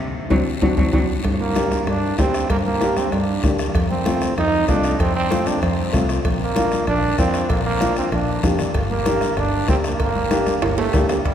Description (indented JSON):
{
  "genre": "latin, cumbia",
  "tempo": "192 BPM",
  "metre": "4/4",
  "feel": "straight",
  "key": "G minor",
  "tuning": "A4 = 440 Hz",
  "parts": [
    { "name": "clear cello", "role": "melody", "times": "0.3-1.0 s", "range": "F#3", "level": "-29 LUFS", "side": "right 1 dB", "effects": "none" },
    { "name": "warm upright piano", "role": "accompaniment", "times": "0.3-11.2 s", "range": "A3 to G4", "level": "-24 LUFS", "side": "left 3 dB", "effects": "none" },
    { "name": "fingered electric bass", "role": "bass", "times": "0.3-11.3 s", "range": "G1 to G2", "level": "-24 LUFS", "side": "equal", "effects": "none" },
    { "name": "bombo", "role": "percussion", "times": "0.3-11.3 s", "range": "none", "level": "-24 LUFS", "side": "equal", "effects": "none" },
    { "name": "congas", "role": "percussion", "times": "0.3-11.3 s", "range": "none", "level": "-29 LUFS", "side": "left 2 dB", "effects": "none" },
    { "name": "guiro", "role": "percussion", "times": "0.3-11.3 s", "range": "none", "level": "-36 LUFS", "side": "left 5 dB", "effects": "none" },
    { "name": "timbales and cowbell", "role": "percussion", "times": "0.3-11.3 s", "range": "none", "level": "-32 LUFS", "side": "right 4 dB", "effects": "none" },
    { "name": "growling trombone", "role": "second line", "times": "1.4-11.3 s", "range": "G3 to Eb4", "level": "-22 LUFS", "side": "right 3 dB", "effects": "none" }
  ],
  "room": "wet cathedral reverb, RT60 7.7 s",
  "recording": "recorded in a church or concert hall",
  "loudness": "-17 LUFS",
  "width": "side -9 dB against mid",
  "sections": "0.0-1.2 A section; 1.2-11.2 B section",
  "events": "band accent 0.0-1.2; drum fill 0.8-1.2, 10.6-11.2; trombone solo 1.2-11.2",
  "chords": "0.0 D7; 1.2 Gm; 3.7 F; 6.2 Bb; 8.7 Gm",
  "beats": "0.31 0.62 0.93 | 1.25 1.56 1.87 2.18 | 2.50 2.81 3.12 3.44 | 3.75 4.06 4.37 4.69 | 5.00 5.31 5.62 5.94 | 6.25 6.56 6.87 7.19 | 7.50 7.81 8.12 8.44 | 8.75 9.06 9.37 9.69 | 10.00 10.31 10.62 10.94 | 11.25"
}